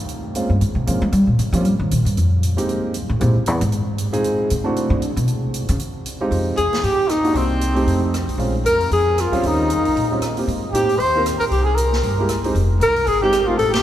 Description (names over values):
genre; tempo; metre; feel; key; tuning
jazz, small-group swing and bop; 231 BPM; 4/4; swing 58% on 8ths; F minor; A4 = 440 Hz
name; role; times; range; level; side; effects
open jazz drum kit; drums; 0.1-13.8 s; hi-hat, ride cymbal, rim click, snare drum; -31 LUFS; right 2 dB; none
warm concert grand piano; accompaniment; 0.4-13.6 s; G3 to Bb4; -24 LUFS; right 1 dB; none
upright bass; bass; 0.5-13.8 s; F1 to Ab3; -20 LUFS; equal; none
warm alto saxophone; melody; 6.6-13.8 s; C4 to C5; -19 LUFS; left 1 dB; none
breathy trumpet; second line; 6.6-13.8 s; C4 to C5; -24 LUFS; right 2 dB; none
room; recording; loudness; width
wet cathedral reverb, RT60 6.7 s; recorded in a church or concert hall; -16 LUFS; side -12 dB against mid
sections
0.0-6.3 A section; 6.3-13.8 B section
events
upright bass solo 0.0-6.3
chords
0.1 Bbm7; 1.1 Eb9 (rootless); 2.2 Abmaj9; 3.2 C7b13; 4.2 Fm7; 4.8 D7; 5.3 N.C.; 5.8 C5; 6.3 Fm9; 7.4 Cm7b5; 7.9 F7; 8.4 Bbm7; 9.4 Eb13; 10.5 Abmaj9; 11.5 C7(no3); 12.5 Fm9